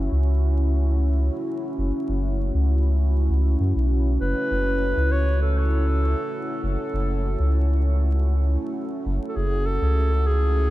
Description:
ambient dub; 99 BPM; 4/4; straight; F# minor; A4 = 441 Hz
deep dark ambient pad; sustained chords; 0.0-10.7 s; A3 to E5; -28 LUFS; equal; chorus, built-in reverb, vintage 12-bit sampler grit
soft dub sub bass; bass; 0.0-10.7 s; F#1 to F#2; -20 LUFS; equal
mellow clarinet; melody; 4.2-10.7 s; G#4 to C#5; -28 LUFS; equal; dub echo
light reverb, studio reverb; echo-heavy mix, vinyl crackle; -20 LUFS; side -16 dB against mid
0.0-10.7 A section
0.0 F#m7

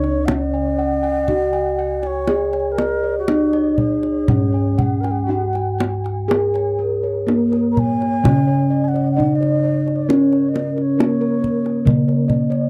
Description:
Javanese gamelan; 60-71 BPM; 4/4; straight; C# pelog barang; A4 = 440 Hz
gamelan-type bronze metallophone; melody; 0.0-12.7 s; A#3+20c to G#4-40c; -22 LUFS; equal
xiao; second line; 0.0-12.4 s; F#4+33c to A#5+23c; -28 LUFS; equal
gamelan-type bossed gongs; arpeggios; 0.0-12.7 s; A#4+20c to G#5-40c; -32 LUFS; equal
gamelan-type bronze metallophone; arpeggios; 0.0-12.7 s; A#4+20c to G#5-40c; -32 LUFS; equal
gamelan-type bossed gongs; bass; 0.0-12.7 s; C#2 to G#4-40c; -24 LUFS; equal
kendang; percussion; 0.0-12.6 s; -23 LUFS; equal
light reverb; dry, close 1970s-style studio recording; -18 LUFS; mono
0.0-12.7 A section

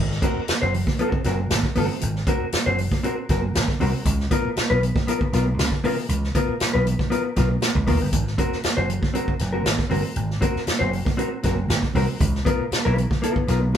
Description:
funk; 118 BPM; 4/4; straight; Ab mixolydian; A4 = 440 Hz
vintage slap bass; bass; 0.0-13.8 s; Gb1 to Db3; -24 LUFS; equal
swinging big-band drum kit; drums; 0.1-13.8 s; hi-hat, kick drum, snare drum; -24 LUFS; equal
mellow electric guitar; accompaniment; 0.2-13.8 s; Cb4 to C5; -25 LUFS; left 2 dB; spring reverb
congas; percussion; 0.2-13.8 s; -33 LUFS; right 6 dB
moderate studio reverb, RT60 0.6 s; band playing live in one room; -20 LUFS; side -9 dB against mid
0.0-13.8 A section
0.0 Ab9; 4.1 Db13; 8.1 Ab9; 12.2 Db6

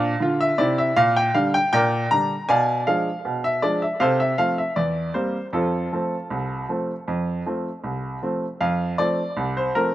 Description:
ragtime piano; 79 BPM; 2/4; straight; F major; A4 = 439 Hz
clear baby grand piano; solo; 0.0-9.9 s; C2 to Bb5; -20 LUFS; equal; slapback echo
little or no reverb; recorded outdoors, with no room sound; -20 LUFS; side -14 dB against mid
0.0-8.6 A section; 8.6-9.9 A section
0.0 F5; 1.0 Gm/Bb; 2.5 Bdim7; 4.0 F/C; 4.8 C7/E; 5.5 F

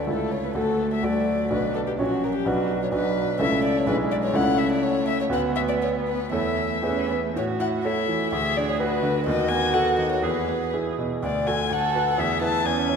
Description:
quick classical-period movement for piano trio; 110-130 BPM; 2/4; rubato; A major from 3.4 s; A4 = 440 Hz
dark violin; melody; 0.0-13.0 s; F#4 to A5; -26 LUFS; left 5 dB
warm cello; second line; 0.0-13.0 s; F#3 to A4; -29 LUFS; right 5 dB
bright grand piano; accompaniment; 0.0-13.0 s; A#1 to C#5; -24 LUFS; right 1 dB
wet concert hall reverb, RT60 2.5 s; minimal, uncompressed stereo recording; -21 LUFS; side -6 dB against mid
0.0-7.4 A section; 7.4-13.0 B section
0.1 A/C#; 0.6 D; 1.5 Bm; 2.0 F#/A#; 2.5 Bm; 3.4 A/C#; 3.9 E7/B; 4.3 A/C#; 5.3 Bm/D; 6.3 A/E; 6.9 E; 7.4 A; 8.3 Bm/D; 9.3 B7/D#; 10.2 E; 11.2 D; 11.7 Bm/D; 12.2 E

